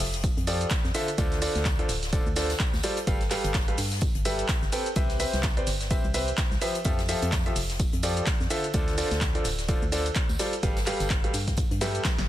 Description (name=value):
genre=piano house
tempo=127 BPM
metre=4/4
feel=swing 58% on 16ths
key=D dorian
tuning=A4 = 440 Hz
part: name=organ-like FM bass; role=bass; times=0.0-12.3 s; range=D1 to G2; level=-31 LUFS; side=equal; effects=sidechain pumping
part: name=punchy analog drum machine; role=drums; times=0.0-12.3 s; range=handclaps, hi-hat, ride cymbal, shaker, snare drum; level=-32 LUFS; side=right 1 dB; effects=none
part: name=unplugged drum kit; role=drums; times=0.0-12.3 s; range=hi-hat, snare drum, tambourine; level=-40 LUFS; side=left 1 dB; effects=high-pass filter on hats, soft clipping on snare, high-pass filter on snare, high-pass filter on perc, high-pass filter on room
part: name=electronic kick drum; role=drums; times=0.2-12.2 s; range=none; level=-28 LUFS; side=equal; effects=none
part: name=bright concert grand piano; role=riff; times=0.5-12.0 s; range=D3 to G5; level=-30 LUFS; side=equal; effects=sidechain pumping, ping-pong delay
room=small room ambience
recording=dense, heavily limited modern master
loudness=-24 LUFS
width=side -13 dB against mid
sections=0.0-12.3 A section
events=drum fill 11.8-12.3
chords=0.0 Fadd9; 0.9 Dm7; 3.1 G9; 5.0 Cmaj7; 6.9 Fmaj9; 8.5 Dm7; 10.6 G9